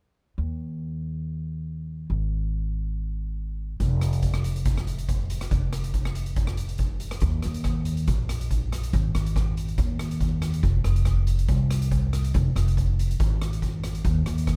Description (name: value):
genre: calypso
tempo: 140 BPM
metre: 4/4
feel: swing 54% on 16ths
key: unclear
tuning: A4 = 444 Hz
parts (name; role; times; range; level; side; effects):
- upright bass; bass; 0.4-14.6 s; F1 to Eb2; -28 LUFS; equal; none
- street-band drum kit; drums; 3.8-14.6 s; hi-hat, kick drum, rim click; -29 LUFS; equal; none
room: little or no reverb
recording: close, detailed microphones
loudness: -26 LUFS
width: mono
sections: 0.4-7.2 A section; 7.2-14.6 B section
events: none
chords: none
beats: | 0.38 0.81 1.24 1.66 | 2.09 2.52 2.95 3.38 | 3.80 4.23 4.66 5.09 | 5.51 5.94 6.37 6.80 | 7.22 7.65 8.08 8.51 | 8.93 9.36 9.79 10.21 | 10.64 11.07 11.49 11.92 | 12.35 12.77 13.20 13.62 | 14.05 14.48